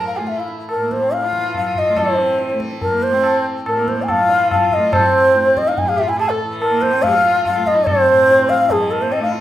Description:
indian classical, Hindustani; 142 BPM; 7/4; straight; A raga todi; A4 = 440 Hz
mellow bansuri; melody; 0.0-9.3 s; G#4 to A5; -15 LUFS; equal; plate reverb
rich sarangi; second line; 0.0-9.4 s; G#3 to Bb4; -26 LUFS; right 2 dB; plate reverb
tanpura; drone; 0.0-9.4 s; A2 to A3; -28 LUFS; equal
tabla; percussion; 0.3-9.3 s; -22 LUFS; left 1 dB
wet studio reverb, RT60 0.5 s; rough home demo mix; -14 LUFS; side -13 dB against mid
0.0-2.0 A section; 2.0-9.4 B section
0.28 0.70 1.13 1.55 | 1.98 2.40 2.82 3.25 3.67 4.09 4.51 | 4.93 5.35 5.77 6.19 6.61 7.03 7.45 | 7.87 8.29 8.71 9.12

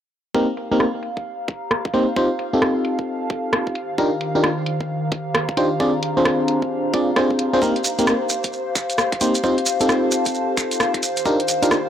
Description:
UK garage, two-step garage; 132 BPM; 4/4; swing 62% on 16ths; C minor; A4 = 440 Hz
airy breathy pad; sustained chords; 0.3-11.9 s; C5 to F5; -31 LUFS; right 1 dB; chorus, sidechain pumping
FM electric piano; stabs; 0.3-11.8 s; Bb3 to D5; -20 LUFS; equal; chorus, low-pass filter, tape echo
electronic kick drum; drums; 0.3-11.4 s; -27 LUFS; equal; high-pass filter on kick, high-pass filter on room
warbly tape-like pad; texture; 0.3-11.9 s; Eb3 to Bb5; -26 LUFS; left 1 dB; chorus, built-in reverb, sidechain pumping
garage drum kit; drums; 0.6-11.8 s; finger snaps, hi-hat, rim click; -22 LUFS; equal; low-pass filter on hats, low-pass filter on snare, low-pass filter on room
shekere; percussion; 7.6-11.8 s; -26 LUFS; right 3 dB
light reverb, digital ambience; dry, gritty hardware recording; -18 LUFS; side -9 dB against mid
0.3-11.9 A section
filter sweep on drum 0.3-11.9
0.3 Cm7; 2.2 F9; 3.8 Ebmaj9; 5.8 Dm7b5; 7.6 Cm7; 9.4 F9; 11.0 Ebmaj9
| 0.35 0.80 1.26 1.71 | 2.17 2.62 3.07 3.53 | 3.98 4.44 4.89 5.35 | 5.80 6.26 6.71 7.17 | 7.62 8.07 8.53 8.98 | 9.44 9.89 10.35 10.80 | 11.26 11.71

